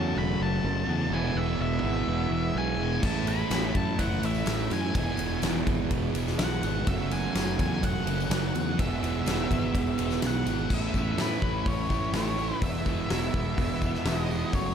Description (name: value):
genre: rock, shoegaze and dream pop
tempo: 125 BPM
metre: 4/4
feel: straight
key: E major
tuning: A4 = 440 Hz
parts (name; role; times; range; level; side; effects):
- octave-fuzz lead guitar; melody; 0.0-14.7 s; B4 to B5; -34 LUFS; left 2 dB; distortion, tape echo
- crunchy overdriven guitar; riff; 0.0-14.7 s; E2 to G#4; -31 LUFS; right 11 dB; reverse reverb
- thick fuzz guitar; riff; 0.0-14.7 s; E2 to A3; -33 LUFS; left 11 dB; distortion, lush chorus
- fingered electric bass; bass; 0.0-14.7 s; E1 to A2; -31 LUFS; left 1 dB; none
- huge arena drum kit; drums; 3.0-14.6 s; crash cymbal, hi-hat, kick drum, ride cymbal, snare drum; -30 LUFS; left 1 dB; none
- tambourine; percussion; 3.0-14.6 s; none; -49 LUFS; left 15 dB; none
room: small room ambience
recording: none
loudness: -25 LUFS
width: side -8 dB against mid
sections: 0.0-10.7 A section; 10.7-14.7 B section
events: none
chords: 0.0 F#m7; 1.1 E; 3.0 A; 5.0 E; 6.9 F#m7; 8.8 E; 10.7 A; 12.6 E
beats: 0.15 0.63 | 1.11 1.59 2.07 2.55 | 3.03 3.51 3.99 4.47 | 4.95 5.43 5.91 6.39 | 6.87 7.35 7.83 8.31 | 8.79 9.27 9.74 10.22 | 10.70 11.18 11.66 12.14 | 12.62 13.10 13.57 14.05 | 14.53